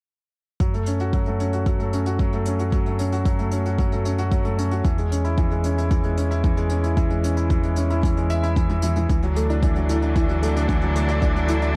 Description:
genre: piano and strings electronica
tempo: 113 BPM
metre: 4/4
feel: straight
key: F# minor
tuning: A4 = 442 Hz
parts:
  - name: felt-muted upright piano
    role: riff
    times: 0.6-11.8 s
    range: E3 to E5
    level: -27 LUFS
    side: equal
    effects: digital delay
  - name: round analog bass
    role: bass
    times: 0.6-11.8 s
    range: D2 to F#2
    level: -26 LUFS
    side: equal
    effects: sidechain pumping
  - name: electronic kick drum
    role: drums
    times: 0.6-11.3 s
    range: none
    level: -25 LUFS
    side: equal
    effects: none
  - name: hi-hat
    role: drums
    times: 0.6-11.7 s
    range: none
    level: -43 LUFS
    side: equal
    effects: none
  - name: bright studio string section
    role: sustained chords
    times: 9.1-11.8 s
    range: D3 to F#4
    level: -30 LUFS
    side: equal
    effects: sidechain pumping
  - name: soft round pluck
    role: arpeggios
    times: 9.1-11.7 s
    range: E4 to E5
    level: -31 LUFS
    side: equal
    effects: ensemble chorus, sidechain pumping, digital delay
room: light reverb, small room reverb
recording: dark, warm production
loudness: -22 LUFS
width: mono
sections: 0.6-11.8 A section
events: none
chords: 0.6 F#m; 4.8 C#m/E; 9.1 Dadd9

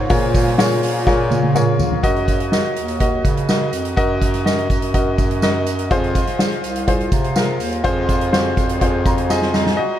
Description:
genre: piano-driven pop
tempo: 124 BPM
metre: 4/4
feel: straight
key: unclear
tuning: A4 = 444 Hz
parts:
  - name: warm upright piano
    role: accompaniment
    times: 0.0-10.0 s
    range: Bb2 to Bb5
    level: -19 LUFS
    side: left 1 dB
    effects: none
  - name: warm bass clarinet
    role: bass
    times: 0.0-9.7 s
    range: C2 to Db3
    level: -22 LUFS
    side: right 1 dB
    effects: none
  - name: soft-mallet drum kit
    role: drums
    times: 0.1-9.8 s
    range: hi-hat, kick drum, snare drum, toms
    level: -19 LUFS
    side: right 1 dB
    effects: none
  - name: tambourine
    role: percussion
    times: 0.1-9.7 s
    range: none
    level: -36 LUFS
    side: right 10 dB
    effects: none
room: moderate huge ambient reverb, RT60 9.5 s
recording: dreamy mix soaked in reverb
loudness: -15 LUFS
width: side -11 dB against mid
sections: 0.0-2.0 A section; 2.0-9.8 B section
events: drum fill 1.1-2.0, 9.3-9.8; upright piano fill 8.8-9.8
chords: 0.0 Bbm7; 2.0 Gb6; 5.9 Fm

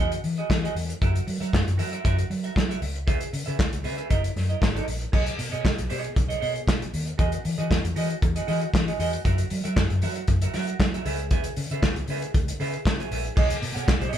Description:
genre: disco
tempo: 117 BPM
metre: 4/4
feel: straight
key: B major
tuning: A4 = 443 Hz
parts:
  - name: semi-hollow electric guitar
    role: accompaniment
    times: 0.0-14.2 s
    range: E4 to F#5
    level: -31 LUFS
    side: right 4 dB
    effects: none
  - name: vintage muted fingered electric bass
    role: bass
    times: 0.0-14.2 s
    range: F#1 to F#3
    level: -28 LUFS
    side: left 1 dB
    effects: none
  - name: warm soul drum kit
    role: drums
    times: 0.1-14.2 s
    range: crash cymbal, handclaps, hi-hat, kick drum, snare drum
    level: -25 LUFS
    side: equal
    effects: none
room: moderate studio reverb, RT60 0.7 s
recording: band playing live in one room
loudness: -23 LUFS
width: side -10 dB against mid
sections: 0.0-5.1 A section; 5.1-13.4 B section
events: none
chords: 0.0 Emaj9; 1.0 F#7; 2.8 C#m7; 4.1 F#13; 5.1 B69; 7.2 Emaj9; 9.3 F#7; 11.1 C#m7; 13.4 B69

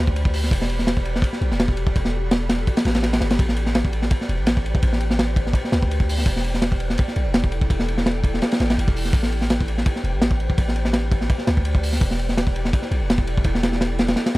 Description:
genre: drum and bass, jungle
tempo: 167 BPM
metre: 4/4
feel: swing 54% on 16ths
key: A minor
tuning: A4 = 439 Hz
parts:
  - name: ethereal airy pad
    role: sustained chords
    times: 0.0-14.4 s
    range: E4 to D5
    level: -31 LUFS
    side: equal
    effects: ensemble chorus, built-in reverb
  - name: long sustained 808-style bass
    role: bass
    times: 0.0-14.4 s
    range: E1 to D2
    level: -23 LUFS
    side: equal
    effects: tube saturation
  - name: wind-like tuned noise texture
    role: texture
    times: 0.0-14.4 s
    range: G5 to B5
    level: -39 LUFS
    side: left 2 dB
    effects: built-in reverb
  - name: crunchy breakbeat drum kit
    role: drums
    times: 0.1-14.4 s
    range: hi-hat, kick drum, ride cymbal, snare drum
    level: -20 LUFS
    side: equal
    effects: none
room: little or no reverb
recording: dry, gritty hardware recording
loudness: -18 LUFS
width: side -19 dB against mid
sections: 0.0-14.4 A section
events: none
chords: 0.0 Am11 (rootless); 0.5 Em11; 3.4 Am11; 6.3 Em7; 9.1 Am11; 12.0 Em7

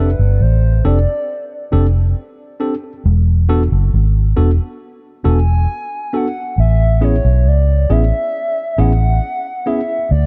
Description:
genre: lovers rock reggae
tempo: 68 BPM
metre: 4/4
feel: straight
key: A major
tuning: A4 = 440 Hz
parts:
  - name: hollow clarinet-like synth lead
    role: melody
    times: 0.0-10.3 s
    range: B4 to G#5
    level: -24 LUFS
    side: equal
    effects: chorus, tape echo
  - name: tine electric piano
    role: accompaniment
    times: 0.0-10.0 s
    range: B3 to A4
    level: -24 LUFS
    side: equal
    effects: none
  - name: vintage muted fingered electric bass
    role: bass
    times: 0.0-10.3 s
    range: E1 to D2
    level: -14 LUFS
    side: equal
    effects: none
room: little or no reverb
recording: dark, warm production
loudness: -15 LUFS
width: mono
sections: 0.0-10.3 A section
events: none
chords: 0.0 F6; 3.0 E7sus4; 6.6 Amaj7

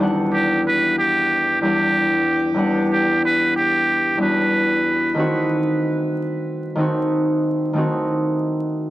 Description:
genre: hip hop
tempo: 93 BPM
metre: 4/4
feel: swing 60% on 16ths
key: E minor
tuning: A4 = 438 Hz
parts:
  - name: concert harp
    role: accompaniment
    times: 0.0-8.9 s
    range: E2 to F#5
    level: -19 LUFS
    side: equal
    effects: high-pass filter, low-pass filter
  - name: trumpet with metal mute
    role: melody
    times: 0.3-5.1 s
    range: G4 to B4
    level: -19 LUFS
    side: right 1 dB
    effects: high-pass filter, low-pass filter, tape echo
room: light reverb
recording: dry, gritty hardware recording, vinyl crackle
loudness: -17 LUFS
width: side -15 dB against mid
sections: 0.0-8.9 A section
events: none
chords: 0.0 Em7; 5.2 D#dim7

